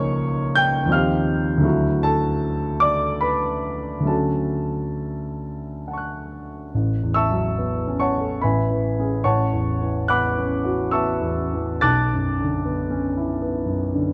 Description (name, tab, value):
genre	classical, impressionist solo piano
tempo	63-82 BPM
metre	3/4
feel	rubato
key	A major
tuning	A4 = 440 Hz
part	warm grand piano	solo	0.0-14.1 s	A1 to A6	-22 LUFS	equal	none
room	light reverb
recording	close, detailed microphones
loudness	-22 LUFS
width	mono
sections	0.0-6.7 A section; 6.7-14.1 B section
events	none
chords	0.0 C#69; 0.9 D#69; 1.7 Dadd9; 4.1 Dmaj7; 6.7 A69; 8.4 C#m7/A; 9.2 A69; 11.8 Bm11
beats	0.19 0.93 | 1.67 2.42 3.23 | 4.09 4.99 5.86 | 6.72 7.58 8.41 | 9.22 10.10 10.93 | 11.83 12.65 13.41